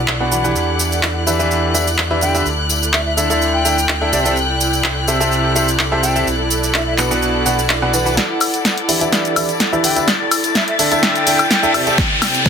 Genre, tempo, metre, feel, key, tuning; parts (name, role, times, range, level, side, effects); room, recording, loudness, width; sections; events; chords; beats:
piano house; 126 BPM; 4/4; straight; E minor; A4 = 441 Hz
rich chamber violin section; sustained chords; 0.0-12.5 s; F#6 to A6; -24 LUFS; left 4 dB; sidechain pumping, low-pass filter
overdriven fingered electric bass; bass; 0.0-8.2 s; B1 to E2; -22 LUFS; equal; sidechain pumping, low-pass filter
rich studio string section; texture; 0.0-12.5 s; C3 to G5; -22 LUFS; right 1 dB; sidechain pumping
punchy analog drum machine; drums; 0.1-12.5 s; handclaps, hi-hat, shaker, snare drum, woodblock; -18 LUFS; equal; overdrive
clear grand piano; riff; 0.2-12.0 s; B2 to F#5; -19 LUFS; equal; sidechain pumping, low-pass filter, dub echo
tambourine; percussion; 0.6-12.5 s; -26 LUFS; left 7 dB
concert flute; melody; 2.2-11.9 s; B4 to G5; -25 LUFS; equal; low-pass filter, dub echo
riser; sound effects; 10.2-12.5 s; -22 LUFS; equal
electronic kick drum; drums; 12.0-12.5 s; -17 LUFS; equal; overdrive
moderate plate reverb, RT60 0.9 s, small room ambience; dense, heavily limited modern master; -13 LUFS; side -7 dB against mid
0.0-8.2 A section; 8.2-12.5 B section
build-up 8.2-12.5; drum fill 8.2-12.5; filter sweep on grand piano 8.2-12.5; filter sweep on violin section 8.2-12.5; filter sweep on flute 8.2-12.5; riser 10.2-12.5
0.0 Bm; 0.6 Em7; 2.5 Dsus2; 4.1 C6; 6.3 Bm; 8.2 Em7; 10.1 Dsus2; 11.7 C6
0.08 | 0.55 1.03 1.51 1.98 | 2.46 2.93 3.41 3.89 | 4.36 4.84 5.32 5.79 | 6.27 6.74 7.22 7.70 | 8.17 8.65 9.12 9.60 | 10.08 10.55 11.03 11.51 | 11.98 12.46